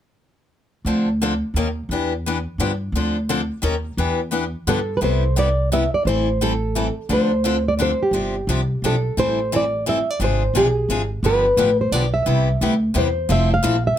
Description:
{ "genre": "acoustic string swing (jazz manouche)", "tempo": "173 BPM", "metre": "3/4", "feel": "swing 61% on 8ths", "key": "C major", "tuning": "A4 = 439 Hz", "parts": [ { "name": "upright bass", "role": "bass", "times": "0.8-13.9 s", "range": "F1 to G2", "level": "-22 LUFS", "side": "equal", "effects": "none" }, { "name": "picked steel-string acoustic guitar", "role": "accompaniment", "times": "0.9-13.8 s", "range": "C3 to Bb4", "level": "-23 LUFS", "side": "left 4 dB", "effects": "none" }, { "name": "nylon-string guitar", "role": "melody", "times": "4.7-14.0 s", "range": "G4 to F5", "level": "-20 LUFS", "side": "right 1 dB", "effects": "slapback echo" } ], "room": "light reverb", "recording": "none", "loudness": "-18 LUFS", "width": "side -10 dB against mid", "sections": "0.9-5.0 A section; 5.0-13.3 B section", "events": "none", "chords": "0.9 Dm7; 1.6 Eb7; 1.9 Em7; 2.6 G7; 2.9 Dm7; 3.6 Eb7; 4.0 Em7; 4.7 G9; 5.0 Cmaj7; 6.1 Am7; 7.1 Dm7; 8.1 G7sus4; 9.2 Am7; 10.2 Fm6/Ab; 11.2 G7; 12.3 Cmaj7; 13.3 Fmaj7", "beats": "| 0.86 1.21 1.55 | 1.90 2.25 2.60 | 2.94 3.29 3.63 | 3.98 4.33 4.67 | 5.02 5.37 5.71 | 6.06 6.40 6.75 | 7.10 7.44 7.79 | 8.13 8.48 8.82 | 9.17 9.52 9.86 | 10.21 10.55 10.90 | 11.24 11.59 11.93 | 12.28 12.62 12.96 | 13.31 13.65" }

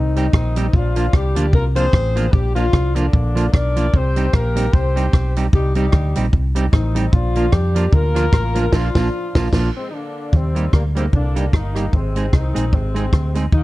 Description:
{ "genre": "ska", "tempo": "150 BPM", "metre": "4/4", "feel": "swing 57% on 8ths", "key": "unclear", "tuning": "A4 = 440 Hz", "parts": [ { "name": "mellow horn section", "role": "melody", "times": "0.0-13.6 s", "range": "C3 to D5", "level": "-23 LUFS", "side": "left 2 dB", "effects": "none" }, { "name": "hollow-body short-scale fingered electric bass", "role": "bass", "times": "0.0-13.6 s", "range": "G1 to F2", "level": "-19 LUFS", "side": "equal", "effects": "none" }, { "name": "semi-hollow electric guitar", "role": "accompaniment", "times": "0.2-13.5 s", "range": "F3 to Ab4", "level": "-24 LUFS", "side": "right 4 dB", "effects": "none" }, { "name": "compact cocktail drum kit", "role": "drums", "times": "0.2-13.6 s", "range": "crash cymbal, hi-hat, kick drum, rim click, snare drum", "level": "-17 LUFS", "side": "equal", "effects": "none" } ], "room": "light reverb, small room ambience", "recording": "dark, warm production", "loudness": "-15 LUFS", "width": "side -18 dB against mid", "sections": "0.0-10.3 A section; 10.3-13.6 B section", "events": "band accent 8.7-10.3", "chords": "0.0 Cm; 0.7 Bb; 3.9 Cm; 7.1 Bb; 10.3 Eb; 11.9 Ab", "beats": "0.33 | 0.73 1.13 1.53 1.93 | 2.33 2.73 3.13 3.53 | 3.93 4.33 4.73 5.13 | 5.53 5.93 6.33 6.73 | 7.13 7.53 7.93 8.33 | 8.73 9.13 9.53 9.93 | 10.32 10.72 11.12 11.53 | 11.93 12.33 12.73 13.13 | 13.53" }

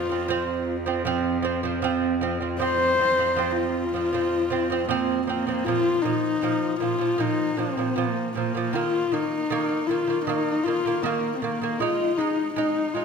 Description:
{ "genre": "mongolian traditional, Mongolian folk", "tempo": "78 BPM", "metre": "4/4", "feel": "straight", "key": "F yu mode", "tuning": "A4 = 438 Hz", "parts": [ { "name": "dark horsehead fiddle", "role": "melody", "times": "0.0-13.0 s", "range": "Bb3 to C5", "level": "-24 LUFS", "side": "left 4 dB", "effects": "none" }, { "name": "lute", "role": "arpeggios", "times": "0.0-13.0 s", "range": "Bb2 to Eb4", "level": "-26 LUFS", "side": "right 6 dB", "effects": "none" }, { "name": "rich cello", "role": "drone", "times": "0.0-5.7 s", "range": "F2", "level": "-34 LUFS", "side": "left 2 dB", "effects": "none" } ], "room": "moderate scoring stage reverb, RT60 1.8 s", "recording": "none", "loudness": "-22 LUFS", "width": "side -6 dB against mid", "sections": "0.0-5.7 A section; 5.7-13.0 B section", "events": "none", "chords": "0.0 F5; 5.7 Bb5; 8.7 Eb5; 11.8 Ab5", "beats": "0.29 1.06 1.83 | 2.59 3.36 4.13 4.90 | 5.67 6.43 7.20 7.97 | 8.74 9.50 10.27 11.04 | 11.80 12.56" }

